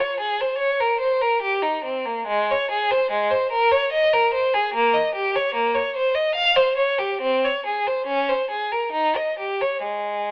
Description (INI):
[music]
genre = classical, baroque-style suite movement for unaccompanied violin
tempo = 65-75 BPM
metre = 3/4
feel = rubato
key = Ab major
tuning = A4 = 440 Hz
[part]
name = rich violin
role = solo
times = 0.0-10.3 s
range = Ab3 to F5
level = -19 LUFS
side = equal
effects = none
[sound]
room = moderate large studio reverb, RT60 1.2 s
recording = telephone sound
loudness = -19 LUFS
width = side -31 dB against mid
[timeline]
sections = 0.0-10.3 A section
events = none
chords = none